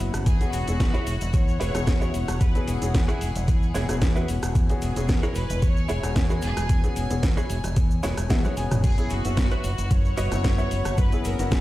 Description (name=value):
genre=nu-disco, nu disco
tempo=112 BPM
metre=4/4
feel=swing 53% on 16ths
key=unclear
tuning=A4 = 440 Hz
part: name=warm baby grand piano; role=accompaniment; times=0.0-11.6 s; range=B3 to G#4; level=-32 LUFS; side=left 2 dB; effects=sidechain pumping
part: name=warm chamber string section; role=sustained chords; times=0.0-11.6 s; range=E4 to D#6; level=-37 LUFS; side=left 3 dB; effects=sidechain pumping
part: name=fingered electric bass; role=bass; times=0.0-11.6 s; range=E1 to F#2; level=-26 LUFS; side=equal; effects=sidechain pumping
part: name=house drum kit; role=drums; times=0.0-11.6 s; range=cabasa, crash cymbal, hi-hat, rim click, snare drum, toms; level=-31 LUFS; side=equal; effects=none
part: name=cabasa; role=percussion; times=0.0-11.6 s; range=none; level=-47 LUFS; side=left 4 dB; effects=none
part: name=direct-recorded clean electric guitar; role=riff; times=0.1-11.5 s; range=E4 to G#5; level=-33 LUFS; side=right 2 dB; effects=ensemble chorus
part: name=rich chamber violin section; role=melody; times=0.3-11.6 s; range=F#4 to C#5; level=-34 LUFS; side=left 1 dB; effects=analog delay
part: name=electronic kick drum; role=drums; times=0.3-11.6 s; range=none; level=-21 LUFS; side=equal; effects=none
room=small room ambience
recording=played on a big sound system in a bare room, stone room reverb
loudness=-21 LUFS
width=side -16 dB against mid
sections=0.0-11.6 A section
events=clean electric guitar fill 8.0-8.8; drum fill 8.3-8.8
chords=0.3 E69; 8.8 F#7sus4